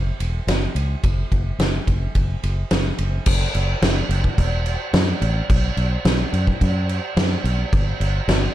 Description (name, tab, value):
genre	rock, shoegaze and dream pop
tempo	108 BPM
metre	4/4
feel	straight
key	unclear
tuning	A4 = 440 Hz
part	fingered electric bass	bass	0.0-8.5 s	E1 to F#2	-21 LUFS	equal	none
part	loose indie drum kit	drums	0.2-8.4 s	crash cymbal, kick drum, ride cymbal, snare drum	-21 LUFS	equal	none
room	light reverb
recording	dark, warm production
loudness	-18 LUFS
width	side -13 dB against mid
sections	0.0-3.3 A section; 3.3-8.5 B section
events	none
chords	none